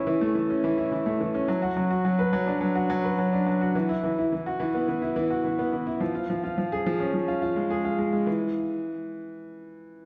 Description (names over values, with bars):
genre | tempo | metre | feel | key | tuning
electronica | 106 BPM | 4/4 | straight | unclear | A4 = 438 Hz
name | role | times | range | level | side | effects
warm grand piano | riff | 0.0-10.1 s | E3 to B4 | -27 LUFS | equal | digital delay
room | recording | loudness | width
wet scoring stage reverb, RT60 1.6 s | none | -26 LUFS | mono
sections
0.0-8.3 A section; 8.3-10.1 B section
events
none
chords
none